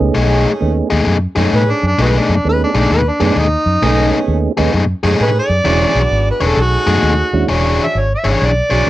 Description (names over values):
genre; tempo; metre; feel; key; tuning
blues; 131 BPM; 4/4; swing 65% on 8ths; unclear; A4 = 436 Hz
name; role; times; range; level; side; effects
tonewheel organ; accompaniment; 0.0-8.9 s; G#3 to B4; -18 LUFS; right 6 dB; slow rotary speaker, overdrive
vintage muted fingered electric bass; bass; 0.0-8.9 s; E1 to A2; -16 LUFS; equal; none
biting overdriven guitar; riff; 0.1-8.9 s; B2 to C#5; -16 LUFS; left 3 dB; none
warm saxophone section; stabs; 0.1-8.9 s; G#3 to C#5; -22 LUFS; right 4 dB; none
overdriven harmonica; melody; 1.6-8.9 s; D4 to E5; -16 LUFS; equal; none
room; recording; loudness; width
light reverb; nothing above 10.8 kHz; -12 LUFS; side -15 dB against mid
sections
0.0-7.5 A section; 7.5-8.9 A section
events
harmonica solo 0.0-8.9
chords
0.2 B13; 5.7 E13; 6.6 B13; 7.5 E13